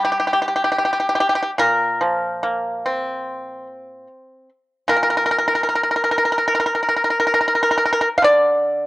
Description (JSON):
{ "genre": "chinese traditional, Chinese solo plucked strings", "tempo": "72 BPM", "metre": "4/4", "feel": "rubato", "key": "unclear", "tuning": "A4 = 442 Hz", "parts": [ { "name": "pipa", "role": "solo", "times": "0.0-8.9 s", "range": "Bb2 to F5", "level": "-16 LUFS", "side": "equal", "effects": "cassette tape" } ], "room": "moderate spring reverb, RT60 1.5 s, small room ambience", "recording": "home recording on cassette", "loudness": "-16 LUFS", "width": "side -18 dB against mid", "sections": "0.0-8.9 A section", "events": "none", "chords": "none" }